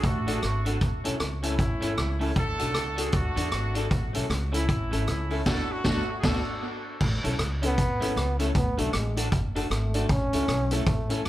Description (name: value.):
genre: ska.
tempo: 155 BPM.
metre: 4/4.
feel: swing 60% on 8ths.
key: A major.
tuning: A4 = 440 Hz.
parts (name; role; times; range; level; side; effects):
warm horn section; melody; 0.0-7.0 s; A3 to A4; -33 LUFS; equal; tape echo.
electric guitar through a small old amp; accompaniment; 0.0-11.2 s; A3 to A4; -36 LUFS; right 1 dB; tape echo.
upright bass; bass; 0.0-11.3 s; F#1 to E2; -29 LUFS; equal; none.
street-band drum kit; drums; 0.0-11.3 s; crash cymbal, hi-hat, kick drum, rim click, snare drum; -28 LUFS; equal; none.
dark upright piano; stabs; 0.3-11.2 s; C#4 to A4; -34 LUFS; left 2 dB; tube saturation, tape echo.
breathy trombone; melody; 7.7-11.3 s; G#3 to C#4; -30 LUFS; equal; none.
room: light reverb, small room ambience.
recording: none.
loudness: -24 LUFS.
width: side -14 dB against mid.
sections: 0.0-7.0 A section; 7.0-11.3 B section.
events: band accent 5.5-7.0; trombone solo 7.0-11.3.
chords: 0.0 D; 0.8 A; 2.4 D; 3.9 A; 5.5 D; 7.0 A; 8.6 D; 10.1 A.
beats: 0.04 0.42 | 0.81 1.20 1.59 1.97 | 2.36 2.75 3.14 3.52 | 3.91 4.30 4.68 5.07 | 5.46 5.85 6.23 6.62 | 7.01 7.39 7.78 8.17 | 8.55 8.94 9.33 9.71 | 10.10 10.49 10.88 11.26.